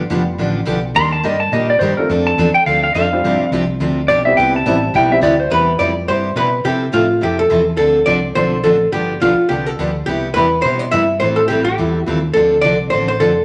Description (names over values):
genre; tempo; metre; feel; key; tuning
country, western swing; 211 BPM; 4/4; swing 60% on 8ths; C major; A4 = 440 Hz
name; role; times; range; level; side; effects
picked steel-string acoustic guitar; accompaniment; 0.0-13.3 s; C3 to A4; -21 LUFS; equal; none
woody fretless electric bass; bass; 0.0-13.4 s; F1 to C3; -24 LUFS; equal; none
warm upright piano; accompaniment; 0.1-5.2 s; G3 to A4; -23 LUFS; equal; none
clean lap steel guitar; second line; 1.0-5.5 s; Bb4 to C6; -17 LUFS; equal; none
archtop guitar, miked and amplified; melody; 5.5-13.4 s; F4 to E5; -17 LUFS; equal; none
room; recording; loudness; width
wet large studio reverb, RT60 1.0 s; none; -15 LUFS; mono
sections
0.0-5.5 A section; 5.5-13.4 B section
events
electric slide guitar solo 0.0-5.5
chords
0.0 G7; 1.0 Ebmaj7; 2.1 F6; 3.2 G7sus4; 4.4 Cmaj7; 6.7 Fmaj7; 7.8 Dm7; 8.9 G7; 10.1 Cmaj7; 11.2 Am7; 12.4 Dm7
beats
0.11 0.40 0.68 | 0.97 1.25 1.53 1.82 | 2.10 2.39 2.67 2.95 | 3.24 3.52 3.81 4.09 | 4.37 4.66 4.94 5.23 | 5.51 5.80 6.08 6.37 | 6.65 6.93 7.22 7.50 | 7.79 8.07 8.36 8.65 | 8.93 9.22 9.50 9.79 | 10.07 10.36 10.64 10.93 | 11.21 11.50 11.78 12.07 | 12.35 12.64 12.92 13.21